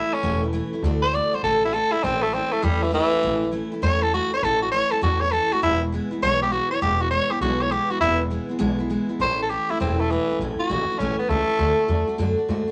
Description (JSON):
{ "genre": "rock", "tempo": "201 BPM", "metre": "4/4", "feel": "swing 65% on 8ths", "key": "A major", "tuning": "A4 = 441 Hz", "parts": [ { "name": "raspy tenor saxophone", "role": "melody", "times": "0.0-12.2 s", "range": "E3 to D5", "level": "-24 LUFS", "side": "equal", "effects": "none" }, { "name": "picked steel-string acoustic guitar", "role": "accompaniment", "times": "0.0-12.7 s", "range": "E2 to F#4", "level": "-29 LUFS", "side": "equal", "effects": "none" }, { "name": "upright bass", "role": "bass", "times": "0.1-12.7 s", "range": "E1 to G#2", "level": "-29 LUFS", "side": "equal", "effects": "none" } ], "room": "light reverb", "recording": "none", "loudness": "-22 LUFS", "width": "mono", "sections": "0.0-10.4 A section; 10.4-12.7 B section", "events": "tenor saxophone solo 0.0-10.4", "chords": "0.0 A; 0.8 D; 2.0 A; 5.6 E; 9.2 A; 11.6 D", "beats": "0.24 0.54 | 0.84 1.14 1.44 1.74 | 2.03 2.33 2.63 2.93 | 3.23 3.53 3.83 4.13 | 4.43 4.73 5.03 5.32 | 5.62 5.92 6.22 6.52 | 6.82 7.12 7.41 7.71 | 8.01 8.31 8.61 8.91 | 9.21 9.50 9.80 10.10 | 10.40 10.70 11.00 11.29 | 11.59 11.89 12.19 12.49" }